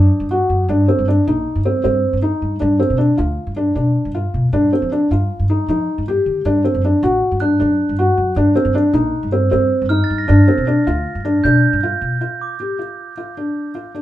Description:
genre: contemporary instrumental, chamber music in an uneven meter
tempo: 156 BPM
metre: 5/4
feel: straight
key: unclear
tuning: A4 = 441 Hz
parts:
  - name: felt-muted upright piano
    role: arpeggios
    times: 0.0-14.0 s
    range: C4 to G4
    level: -16 LUFS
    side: equal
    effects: none
  - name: upright bass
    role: bass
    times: 0.0-12.2 s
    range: A1 to F3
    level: -18 LUFS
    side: equal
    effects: none
  - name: glockenspiel with rubber mallets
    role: texture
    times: 7.4-13.8 s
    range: D6 to Bb6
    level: -24 LUFS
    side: right 6 dB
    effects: none
room: wet studio reverb, RT60 0.7 s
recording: heard from further back in the room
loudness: -14 LUFS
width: side -13 dB against mid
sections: 0.0-12.2 A section; 12.2-14.0 B section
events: none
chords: 0.0 D; 0.7 Eb6; 2.6 G7; 4.5 Cmadd9/G (rootless); 6.5 D; 8.4 Eb6; 10.3 G7; 12.2 G5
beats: 0.30 | 0.69 1.07 1.46 1.84 2.22 | 2.61 2.99 3.38 3.76 4.15 | 4.53 4.92 5.30 5.68 6.07 | 6.45 6.84 7.22 7.61 7.99 | 8.37 8.76 9.14 9.52 9.91 | 10.29 10.67 11.06 11.44 11.82 | 12.21 12.60 12.98 13.37 13.75

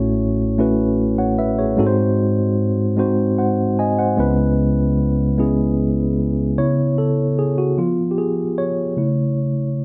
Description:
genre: gospel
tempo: 50 BPM (dotted quarters)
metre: 6/8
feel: straight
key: C# minor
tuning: A4 = 439 Hz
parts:
  - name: mellow tine electric piano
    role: solo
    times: 0.0-9.8 s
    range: A1 to G#5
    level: -19 LUFS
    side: equal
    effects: none
room: wet large studio reverb, RT60 1.1 s, digital ambience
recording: none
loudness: -19 LUFS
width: mono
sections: 0.0-6.6 A section; 6.6-9.8 B section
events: tine electric piano solo 6.6-9.8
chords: 0.0 F#m7/A; 1.8 G#7; 4.2 C#m7; 7.8 Fdim; 9.0 A/C#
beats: 0.59 | 1.79 2.98 | 4.18 5.38 | 6.58 7.77 | 8.97

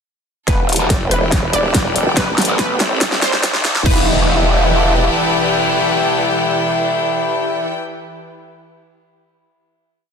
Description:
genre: heavy wobble dubstep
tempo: 142 BPM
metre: 4/4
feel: half-time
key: E minor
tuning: A4 = 440 Hz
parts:
  - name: wide unison pluck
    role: melody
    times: 0.5-7.7 s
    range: B4 to D5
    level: -23 LUFS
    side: equal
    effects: ping-pong delay
  - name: supersaw pad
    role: sustained chords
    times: 0.5-7.7 s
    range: E3 to B4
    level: -22 LUFS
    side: equal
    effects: sidechain pumping, low-pass filter
  - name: growl bass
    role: bass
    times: 0.5-5.1 s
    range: E1 to C2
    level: -17 LUFS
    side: equal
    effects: chorus, overdrive
  - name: dubstep drum kit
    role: drums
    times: 0.5-3.9 s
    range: crash cymbal, hi-hat, snare drum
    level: -19 LUFS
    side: equal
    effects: small room ambience
  - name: electronic kick drum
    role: drums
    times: 0.5-3.9 s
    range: none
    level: -19 LUFS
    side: equal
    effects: small room ambience
  - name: riser and impact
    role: sound effects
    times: 2.1-7.7 s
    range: none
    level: -26 LUFS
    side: right 1 dB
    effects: none
  - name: clear studio string section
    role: texture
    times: 0.5-7.8 s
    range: A4 to G5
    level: -21 LUFS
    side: left 2 dB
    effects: sidechain pumping
  - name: sludgy distorted guitar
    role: stabs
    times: 0.8-7.7 s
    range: C4 to B4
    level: -21 LUFS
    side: left 2 dB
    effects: overdrive, ping-pong delay
  - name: vowel-sweep wobble bass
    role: bass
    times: 0.9-3.6 s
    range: E1 to A1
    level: -20 LUFS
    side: equal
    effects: chorus, overdrive
room: light reverb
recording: dense, heavily limited modern master, high-pass filter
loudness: -13 LUFS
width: side -6 dB against mid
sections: 0.5-3.9 build; 3.9-7.2 final chord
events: build-up 0.5-3.9; drum fill 0.5-3.9; filter sweep on supersaw synth 0.5-3.9; filter sweep 0.5-3.9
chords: 0.5 Em; 2.2 Am7; 3.9 Em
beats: | 0.48 0.90 1.32 1.75 | 2.17 2.59 3.01 3.44 | 3.86 4.28 4.70 5.13 | 5.55 5.97 6.39 6.82

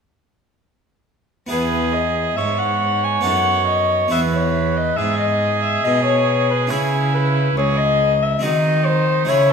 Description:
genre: classical, baroque-style sonata movement with continuo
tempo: 70 BPM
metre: 3/4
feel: straight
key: E major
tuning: A4 = 440 Hz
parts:
  - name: dark violin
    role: melody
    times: 1.5-9.5 s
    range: G#4 to G#5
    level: -19 LUFS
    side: left 5 dB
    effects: none
  - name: bright oboe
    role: second line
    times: 1.5-9.5 s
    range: D#4 to C#5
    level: -22 LUFS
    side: right 7 dB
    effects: none
  - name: harpsichord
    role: accompaniment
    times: 1.5-9.5 s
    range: C#2 to A4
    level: -25 LUFS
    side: right 1 dB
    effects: none
  - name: rich cello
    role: bass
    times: 1.5-9.5 s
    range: C#2 to D#3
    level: -22 LUFS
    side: right 2 dB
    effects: none
room: wet concert hall reverb, RT60 1.8 s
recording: none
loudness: -16 LUFS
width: side -6 dB against mid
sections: 1.5-9.5 A section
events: none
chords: 1.5 E; 3.3 B7/F#; 4.1 E; 6.7 C#m; 8.4 G#7/D#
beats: | 1.51 2.38 3.25 | 4.12 4.99 5.85 | 6.71 7.57 8.43 | 9.29

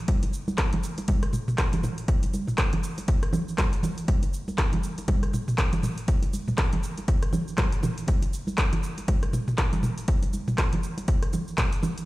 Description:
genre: house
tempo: 120 BPM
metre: 4/4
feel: swing 59% on 16ths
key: none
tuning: none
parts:
  - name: afro-pop drum kit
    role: drums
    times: 0.1-12.1 s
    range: cabasa, handclaps, hi-hat, rim click, toms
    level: -30 LUFS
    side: equal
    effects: studio ambience
  - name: electronic kick drum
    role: drums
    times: 0.1-11.7 s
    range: none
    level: -25 LUFS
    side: equal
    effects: studio ambience
  - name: congas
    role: percussion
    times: 0.1-11.9 s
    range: none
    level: -31 LUFS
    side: right 2 dB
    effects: none
room: little or no reverb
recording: played on a big sound system in a bare room, stone room reverb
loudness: -23 LUFS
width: side -18 dB against mid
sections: 0.0-12.1 A section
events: none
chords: none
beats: | 0.08 0.58 1.08 1.58 | 2.08 2.58 3.08 3.58 | 4.08 4.58 5.08 5.58 | 6.08 6.58 7.08 7.58 | 8.08 8.58 9.08 9.58 | 10.08 10.58 11.08 11.58

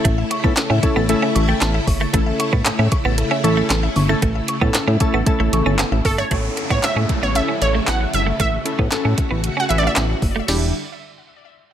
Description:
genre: dance-pop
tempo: 115 BPM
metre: 4/4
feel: straight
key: unclear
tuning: A4 = 441 Hz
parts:
  - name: glassy digital keys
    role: accompaniment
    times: 0.0-10.7 s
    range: A3 to C#6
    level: -24 LUFS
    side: left 2 dB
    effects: chorus, sidechain pumping
  - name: string machine, violins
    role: sustained chords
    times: 0.0-10.7 s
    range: C#3 to F#4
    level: -26 LUFS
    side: left 1 dB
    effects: ensemble chorus, sidechain pumping
  - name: mallet-like synth pluck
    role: arpeggios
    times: 0.0-6.3 s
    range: A4 to A6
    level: -27 LUFS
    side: left 2 dB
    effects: chorus, sidechain pumping, ping-pong delay
  - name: clean electric guitar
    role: riff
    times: 0.0-10.6 s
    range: G3 to C#4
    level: -25 LUFS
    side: right 6 dB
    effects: analog chorus
  - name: chorused synth bass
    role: bass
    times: 0.1-10.7 s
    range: E1 to A2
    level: -20 LUFS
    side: equal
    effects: sidechain pumping
  - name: smooth R&B drum kit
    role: drums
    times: 0.1-10.6 s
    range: crash cymbal, handclaps, hi-hat, kick drum, snare drum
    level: -20 LUFS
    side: equal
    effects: none
  - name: wide unison pluck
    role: melody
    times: 6.1-10.0 s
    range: A4 to F#5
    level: -22 LUFS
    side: right 2 dB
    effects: ping-pong delay
  - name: downlifter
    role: sound effects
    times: 6.3-10.5 s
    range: none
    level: -30 LUFS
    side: right 2 dB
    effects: none
room: digital ambience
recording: none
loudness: -16 LUFS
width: side -10 dB against mid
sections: 0.0-6.3 A section; 6.3-10.5 B section; 10.5-11.7 C section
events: drop 0.0-6.3; synth keys fill 0.6-2.1, 5.5-6.3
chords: 0.0 A; 10.5 Em7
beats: | 0.05 0.57 1.09 1.61 | 2.14 2.66 3.18 3.70 | 4.22 4.75 5.27 5.79 | 6.31 6.83 7.35 7.88 | 8.40 8.92 9.44 9.96 | 10.48

